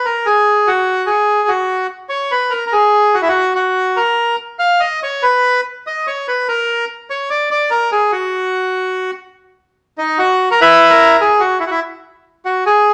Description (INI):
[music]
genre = musette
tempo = 146 BPM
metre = 3/4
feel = straight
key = unclear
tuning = A4 = 442 Hz
[part]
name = bandoneon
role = solo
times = 0.0-12.9 s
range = D#4 to F5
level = -14 LUFS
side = equal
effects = none
[sound]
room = moderate large studio reverb, RT60 0.9 s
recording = none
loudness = -15 LUFS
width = mono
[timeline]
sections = 0.0-9.3 A section; 9.3-12.9 B section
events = none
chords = none